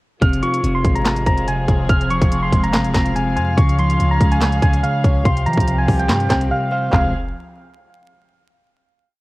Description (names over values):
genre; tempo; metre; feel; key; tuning
hip hop, trap; 143 BPM; 4/4; half-time; F minor; A4 = 443 Hz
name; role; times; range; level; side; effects
soft electric-piano-like synth keys; melody; 0.2-7.1 s; F5 to F6; -22 LUFS; right 1 dB; chorus, low-pass filter
electric guitar at the edge of break-up; accompaniment; 0.2-7.1 s; C3 to Db5; -20 LUFS; equal; phaser, low-pass filter
dark studio string section; sustained chords; 0.2-7.1 s; F3 to F5; -26 LUFS; equal; none
clean 808-style bass; bass; 0.2-7.3 s; F1 to E3; -21 LUFS; equal; none
trap drum kit; drums; 0.2-7.0 s; handclaps, hi-hat, kick drum, snare drum, toms; -18 LUFS; equal; none
room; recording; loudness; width
little or no reverb; worn, warbling old tape, cassette tape, vinyl crackle, warbly pitch drift; -14 LUFS; side -20 dB against mid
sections
0.2-6.9 hook; 6.9-8.6 final chord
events
break 6.5-6.9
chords
0.2 Fm; 3.6 Db; 5.3 Csus4; 6.9 Fm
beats
| 0.22 0.64 1.06 1.48 | 1.90 2.31 2.73 3.15 | 3.57 3.99 4.41 4.83 | 5.25 5.67 6.09 6.51 | 6.93